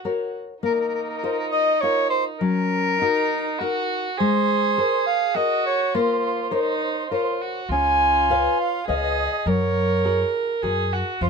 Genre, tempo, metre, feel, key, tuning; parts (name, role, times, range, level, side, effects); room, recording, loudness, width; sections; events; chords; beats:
italian folk, Italian serenade; 102 BPM; 3/4; straight; Bb minor; A4 = 440 Hz
dark violin; second line; 0.0-11.3 s; Db4 to Bb4; -26 LUFS; right 4 dB
nylon-string guitar; accompaniment; 0.0-11.3 s; F3 to F5; -25 LUFS; left 4 dB
clear soprano saxophone; melody; 0.7-11.3 s; Bb4 to Ab5; -22 LUFS; right 1 dB
upright bass; bass; 7.7-11.3 s; Db2 to Gb2; -26 LUFS; left 1 dB
light reverb; minimal, uncompressed stereo recording; -19 LUFS; side -5 dB against mid
0.6-11.3 A section
0.0 F#; 0.6 Bbsus2; 2.4 Gb6; 4.2 Abadd9; 5.9 Bbmadd9; 7.7 Db7; 9.5 Gbadd9
0.05 | 0.65 1.24 1.83 | 2.42 3.02 3.60 | 4.18 4.76 5.35 | 5.93 6.52 7.11 | 7.71 8.30 8.89 | 9.47 10.05 10.64 | 11.21